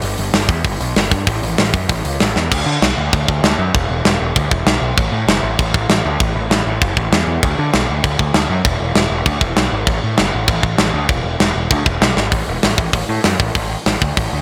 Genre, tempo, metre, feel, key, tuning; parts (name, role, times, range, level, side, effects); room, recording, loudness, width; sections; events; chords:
punk rock; 195 BPM; 4/4; straight; A4 = 440 Hz
fuzz picked electric bass; bass; 0.0-14.4 s; E1 to D3; -21 LUFS; equal; overdrive
tight metal drum kit; drums; 0.0-14.2 s; crash cymbal, hi-hat, kick drum, snare drum; -18 LUFS; equal
little or no reverb; -16 LUFS; mono
0.0-2.5 A section; 2.5-12.3 B section; 12.3-14.4 C section
drum fill 2.4, 12.2